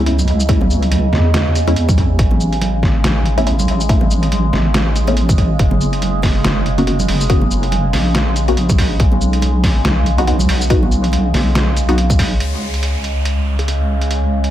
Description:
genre	deep dubstep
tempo	141 BPM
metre	4/4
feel	swing 57% on 16ths, half-time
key	C# minor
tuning	A4 = 439 Hz
part	overtone-sweeping drone	sustained chords	0.0-14.5 s	C#3 to G#3	-22 LUFS	right 2 dB	chorus, built-in reverb, phaser, vintage 12-bit sampler grit
part	deep soft wobble bass	bass	0.0-14.5 s	F#1 to E2	-16 LUFS	equal	chorus
part	filtered dub chord stab	stabs	0.1-14.2 s	G#3 to G#4	-22 LUFS	left 2 dB	phaser, dub echo
part	trip hop sampler-style drum kit	drums	0.1-14.5 s	hi-hat, shaker, snare drum	-21 LUFS	equal	overdrive
part	congas	percussion	0.2-12.2 s	none	-23 LUFS	right 3 dB	none
part	electronic kick drum	drums	0.5-12.3 s	none	-15 LUFS	equal	none
part	downlifter	sound effects	12.4-14.5 s	none	-28 LUFS	equal	none
room	digital ambience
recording	none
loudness	-13 LUFS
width	side -12 dB against mid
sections	0.0-12.4 A section; 12.4-14.5 B section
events	filter sweep on synth stab 12.4-14.5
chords	0.0 C#m; 2.2 A; 5.6 F#; 9.0 N.C.; 12.4 C#5

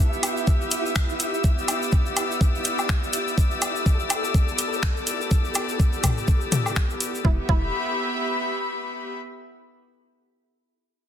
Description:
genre	minimal techno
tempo	124 BPM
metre	4/4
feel	swing 57% on 16ths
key	E minor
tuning	A4 = 440 Hz
part	flickering grainy texture	texture	0.0-7.3 s	E4 to E5	-33 LUFS	right 1 dB	built-in reverb, sidechain pumping
part	rich chamber string section	texture	0.0-9.1 s	B3 to E6	-27 LUFS	left 2 dB	sidechain pumping
part	egg shaker	percussion	0.1-7.2 s	none	-34 LUFS	left 2 dB	none
part	garage drum kit	drums	0.2-7.1 s	finger snaps, hi-hat	-27 LUFS	equal	studio reverb, soft clipping on snare
part	electronic woodblock and toms	percussion	0.2-6.7 s	none	-27 LUFS	left 2 dB	overdrive, studio reverb
part	electronic kick drum	drums	0.5-7.6 s	none	-20 LUFS	equal	studio reverb
part	resonant blip pluck	riff	7.2-7.7 s	E4	-33 LUFS	right 8 dB	chorus, phaser, sidechain pumping, ping-pong delay
part	hollow knocking FM bass	bass	7.2-7.7 s	E1	-29 LUFS	equal	sidechain pumping
room	light reverb, studio reverb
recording	dense, heavily limited modern master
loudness	-21 LUFS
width	side -9 dB against mid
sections	0.0-7.2 A section; 7.2-9.2 B section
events	none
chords	0.0 Em

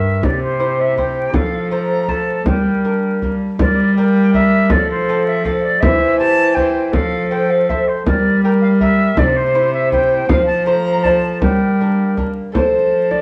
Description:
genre	classical, renaissance-style consort dance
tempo	161 BPM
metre	3/4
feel	straight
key	G dorian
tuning	A4 = 440 Hz
part	silver concert flute	melody	0.0-13.2 s	C5 to Bb5	-23 LUFS	equal	none
part	tenor recorder	second line	0.0-13.2 s	G4 to D5	-22 LUFS	equal	none
part	lute	accompaniment	0.0-13.2 s	G2 to C5	-24 LUFS	equal	none
part	rich cello	bass	0.0-13.2 s	G2 to G3	-20 LUFS	equal	none
part	frame drum	percussion	0.2-13.2 s	none	-21 LUFS	equal	none
room	moderate stone room reverb, RT60 1.0 s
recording	heard from further back in the room, vinyl crackle, faint mains hum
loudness	-16 LUFS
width	mono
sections	0.0-3.6 A section; 3.6-12.5 A section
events	none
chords	0.2 C; 1.3 F; 2.5 Gm; 4.7 F; 5.8 C/E; 6.9 F; 8.1 Gm; 9.2 C; 10.3 F; 11.4 Gm; 12.5 F

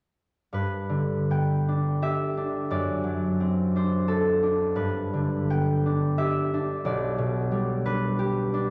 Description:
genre	classical, solo harp piece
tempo	73-91 BPM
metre	3/4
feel	rubato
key	G major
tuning	A4 = 438 Hz
part	concert harp	solo	0.5-8.7 s	B1 to G5	-26 LUFS	equal	none
room	wet cathedral reverb, RT60 4.8 s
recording	none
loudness	-26 LUFS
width	mono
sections	0.5-8.7 A section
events	none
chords	0.5 G; 2.7 D7/F#; 4.8 G; 6.8 G/B

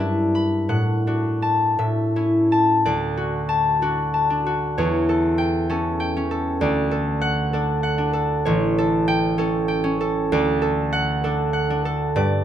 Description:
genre	classical, solo harp piece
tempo	55-66 BPM (dotted quarters)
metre	6/8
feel	rubato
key	D major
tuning	A4 = 441 Hz
part	concert harp	solo	0.0-12.4 s	A1 to B5	-19 LUFS	equal	none
room	light reverb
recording	none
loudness	-19 LUFS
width	side -10 dB against mid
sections	0.0-2.9 A section; 2.9-12.4 B section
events	none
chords	0.0 Em7/G; 0.7 D/A; 1.8 A; 2.9 D; 4.8 A7/E; 6.6 D; 8.4 A7; 10.3 D

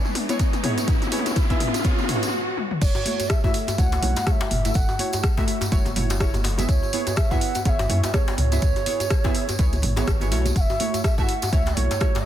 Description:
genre	afro house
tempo	124 BPM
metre	4/4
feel	swing 58% on 16ths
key	F# minor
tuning	A4 = 440 Hz
part	deep mellow chord stab	stabs	0.0-12.3 s	A3 to E5	-28 LUFS	right 1 dB	chorus, vintage 12-bit sampler grit, sidechain pumping, dub echo
part	tambourine	percussion	0.0-12.2 s	none	-37 LUFS	right 3 dB	none
part	riser	sound effects	0.0-2.3 s	none	-29 LUFS	equal	none
part	deep house drum kit	drums	0.1-12.2 s	crash cymbal, hi-hat, rim click, toms	-28 LUFS	left 1 dB	overdrive
part	electronic kick drum	drums	0.4-12.1 s	none	-22 LUFS	equal	overdrive
part	breathy bass bansuri	melody	2.8-12.3 s	C#5 to A5	-29 LUFS	right 2 dB	dub echo
part	warm sub bass	bass	2.8-11.9 s	F#1 to F#2	-24 LUFS	equal	sidechain pumping
part	congas	percussion	2.8-12.1 s	none	-34 LUFS	right 2 dB	none
part	djembe	percussion	2.9-12.2 s	none	-30 LUFS	left 2 dB	none
room	light reverb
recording	dense, heavily limited modern master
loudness	-20 LUFS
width	side -11 dB against mid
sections	0.0-2.8 A section; 2.8-12.3 B section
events	build-up 0.0-2.8; drum fill 0.0-2.3, 2.6; riser 0.0-2.3; stop 2.3-2.8; drop 2.8-12.3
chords	0.0 C#m7; 2.8 F#m7; 6.7 C#m7; 10.6 F#m7

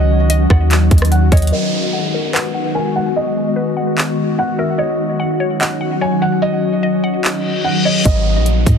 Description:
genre	hip hop, atmospheric cloud-rap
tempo	147 BPM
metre	4/4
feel	half-time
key	G# minor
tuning	A4 = 440 Hz
part	felt-muted upright piano	melody	0.0-8.4 s	D#5 to G#5	-22 LUFS	right 2 dB	low-pass filter, tape echo
part	glassy FM pad	sustained chords	0.0-8.8 s	D#3 to F#4	-18 LUFS	left 2 dB	ensemble chorus, built-in reverb, sidechain pumping, low-pass filter
part	mallet-like synth pluck	arpeggios	0.0-8.1 s	A#4 to F#5	-26 LUFS	left 4 dB	chorus, low-pass filter, tape echo
part	soft 808-style bass	bass	0.0-1.5, 8.1-8.8 s	G#1 to G#2	-13 LUFS	equal	none
part	trap drum kit	drums	0.3-8.8 s	handclaps, hi-hat, kick drum, rim click	-16 LUFS	equal	none
part	downlifter and reverse cymbal	sound effects	1.5-8.8 s	none	-22 LUFS	left 1 dB	none
room	little or no reverb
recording	heavily compressed radio sound, multiband compression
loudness	-13 LUFS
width	side -7 dB against mid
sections	0.0-1.5 A section; 1.5-8.1 B section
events	filter sweep 1.5-8.1; reverse cymbal 7.4-8.1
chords	0.0 D#m7; 1.5 G#m9; 4.8 D#m7; 8.1 G#m9

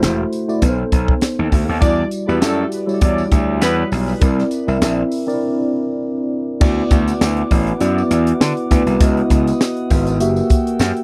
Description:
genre	polished 1980s jazz-funk pop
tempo	100 BPM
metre	4/4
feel	swing 54% on 16ths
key	D major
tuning	A4 = 442 Hz
part	mellow tine electric piano	accompaniment	0.0-11.0 s	G3 to E5	-21 LUFS	equal	analog chorus
part	gritty slap bass	bass	0.0-10.9 s	E1 to D3	-21 LUFS	equal	overdrive
part	crisp fusion drum kit	drums	0.0-11.0 s	crash cymbal, hi-hat, kick drum, snare drum	-18 LUFS	equal	none
part	tambourine	percussion	0.0-10.9 s	none	-39 LUFS	equal	none
part	mellow horn section	second line	1.8-3.9 s	A3 to D5	-25 LUFS	equal	tape echo
part	glass harmonica	sustained chords	6.6-11.0 s	E4 to E6	-30 LUFS	equal	none
room	little or no reverb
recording	dry, close 1970s-style studio recording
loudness	-17 LUFS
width	mono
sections	0.0-6.6 A section; 6.6-11.0 B section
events	break 5.4-6.6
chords	0.0 F#m7b5; 0.6 B7b9; 1.8 Em9; 4.2 C9; 6.6 D69; 9.0 C#m11; 10.2 F#7b9

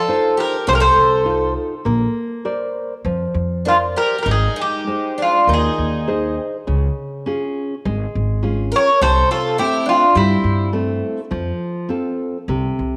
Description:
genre	fado-style ballad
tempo	101 BPM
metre	4/4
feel	rubato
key	unclear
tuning	A4 = 440 Hz
part	Greek bouzouki	melody	0.0-10.7 s	E4 to Db5	-19 LUFS	equal	none
part	picked twelve-string acoustic guitar	second line	0.0-10.7 s	C4 to Bb4	-27 LUFS	equal	none
part	nylon-string guitar	accompaniment	0.0-13.0 s	C3 to E5	-25 LUFS	equal	none
part	upright bass	bass	0.7-13.0 s	Ab1 to G2	-23 LUFS	equal	none
room	moderate echo chamber reverb, RT60 2.1 s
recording	none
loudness	-18 LUFS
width	mono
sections	0.0-13.0 A section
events	none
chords	0.0 F7; 1.9 Bbadd9; 4.3 Ab; 6.7 Db; 9.0 C6; 11.3 F

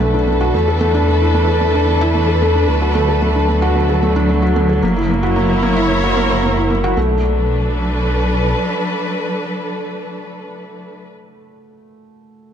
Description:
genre	piano and strings electronica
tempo	112 BPM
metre	4/4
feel	straight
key	B minor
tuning	A4 = 438 Hz
part	dark chamber string section	sustained chords	0.0-11.1 s	E3 to C#5	-19 LUFS	left 1 dB	none
part	felt-muted upright piano	riff	0.0-12.5 s	A3 to A#4	-18 LUFS	equal	ping-pong delay
part	dark detuned saw bass	bass	0.0-8.5 s	F#1 to E2	-18 LUFS	equal	none
room	moderate lush hall reverb, RT60 2.7 s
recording	dark, warm production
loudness	-13 LUFS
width	side -8 dB against mid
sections	0.0-7.0 A section; 7.0-11.3 B section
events	drop 0.0-7.0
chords	0.0 Bm7; 0.5 E7sus4; 2.7 Bm7/D; 4.8 F#7; 7.0 Bm7

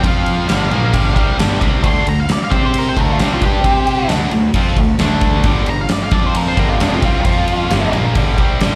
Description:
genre	blues rock power trio and southern rock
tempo	133 BPM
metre	4/4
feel	straight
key	unclear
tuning	A4 = 440 Hz
part	octave-fuzz lead guitar	melody	0.0-7.9 s	D4 to D6	-23 LUFS	equal	distortion, slapback echo
part	biting overdriven guitar	riff	0.0-8.8 s	F2 to C5	-21 LUFS	equal	slapback echo
part	fuzz fingered electric bass	bass	0.0-8.8 s	F1 to C3	-21 LUFS	equal	overdrive
part	huge arena drum kit	drums	0.0-8.7 s	kick drum, ride cymbal, snare drum	-19 LUFS	equal	none
room	light reverb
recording	live gig heard through the venue's PA, club reverb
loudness	-15 LUFS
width	mono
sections	0.0-8.8 A section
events	lead electric guitar solo 0.0-8.8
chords	0.0 F5; 0.5 G5; 1.8 D5; 2.5 C5; 3.0 D5; 3.6 C5; 4.1 D5; 5.4 G5; 6.1 F5; 6.6 G5; 7.3 F5; 7.7 G5

